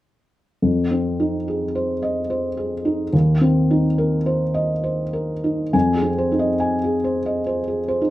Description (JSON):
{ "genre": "neoclassical minimalist piano", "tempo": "71 BPM", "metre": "3/4", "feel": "rubato", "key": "F minor", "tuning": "A4 = 440 Hz", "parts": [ { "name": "felt-muted upright piano", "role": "solo", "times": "0.6-8.1 s", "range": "Eb2 to Ab5", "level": "-18 LUFS", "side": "equal", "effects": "none" } ], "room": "moderate small room reverb, RT60 0.5 s", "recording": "rough home demo mix", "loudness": "-18 LUFS", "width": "side -15 dB against mid", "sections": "0.6-5.7 A section; 5.7-8.1 B section", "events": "none", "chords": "0.6 Fm7; 3.1 Cm7/Eb; 5.7 Fm7" }